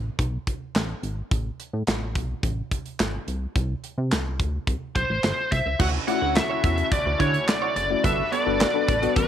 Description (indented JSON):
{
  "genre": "early-eighties boogie funk",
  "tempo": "107 BPM",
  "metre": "4/4",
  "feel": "straight",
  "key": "D major",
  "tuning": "A4 = 440 Hz",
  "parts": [
    { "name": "chorused synth bass", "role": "bass", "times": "0.0-9.3 s", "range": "F#1 to D3", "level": "-27 LUFS", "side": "equal", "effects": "none" },
    { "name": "modern studio drum kit", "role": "drums", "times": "0.2-9.3 s", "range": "crash cymbal, handclaps, hi-hat, kick drum, snare drum", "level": "-26 LUFS", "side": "equal", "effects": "none" },
    { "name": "biting lead guitar", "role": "melody", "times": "5.0-9.3 s", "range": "B4 to F#5", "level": "-24 LUFS", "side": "equal", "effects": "overdrive, slapback echo" },
    { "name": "brassy analog pad", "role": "sustained chords", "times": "5.8-9.3 s", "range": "D3 to B4", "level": "-33 LUFS", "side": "equal", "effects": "chorus" },
    { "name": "semi-hollow electric guitar", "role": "riff", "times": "5.8-9.2 s", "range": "B3 to D5", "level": "-31 LUFS", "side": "right 13 dB", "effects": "analog chorus" },
    { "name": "mellow FM electric piano", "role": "accompaniment", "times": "6.1-9.3 s", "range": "A3 to A4", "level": "-27 LUFS", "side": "left 14 dB", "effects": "chorus" }
  ],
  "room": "light reverb, studio reverb",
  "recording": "1960s-style stereo with parts hard left and right",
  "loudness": "-22 LUFS",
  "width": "side -10 dB against mid",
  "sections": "0.0-5.8 A section; 5.8-9.3 B section",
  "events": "none",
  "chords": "0.0 Gadd9 (rootless); 3.3 N.C.; 5.8 Dmaj9; 8.0 Gmaj9",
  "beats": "0.19 0.75 | 1.31 1.87 2.43 3.00 | 3.56 4.12 4.68 5.24 | 5.80 6.36 6.92 7.48 | 8.04 8.60 9.16"
}